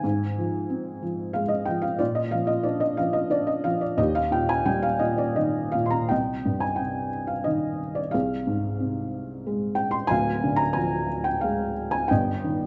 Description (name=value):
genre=classical, lyrical solo piano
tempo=90 BPM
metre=3/4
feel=rubato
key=Eb major, C minor from 6.1 s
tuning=A4 = 436 Hz
part: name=felt-muted upright piano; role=solo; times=0.0-12.7 s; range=D1 to C6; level=-26 LUFS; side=equal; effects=none
room=moderate recital hall reverb, RT60 1.5 s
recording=dark, warm production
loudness=-26 LUFS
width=mono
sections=0.0-6.1 A section; 6.1-12.7 B section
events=none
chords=0.0 Fm/Ab; 2.0 Bb; 4.0 Eb; 6.1 Cm; 8.1 Fm/C; 10.1 Ddim; 12.1 Eb/G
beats=| 0.04 0.70 1.35 | 2.00 2.65 3.31 | 3.98 4.66 5.38 | 6.11 6.80 7.48 | 8.15 8.80 9.46 | 10.11 10.77 11.44 | 12.11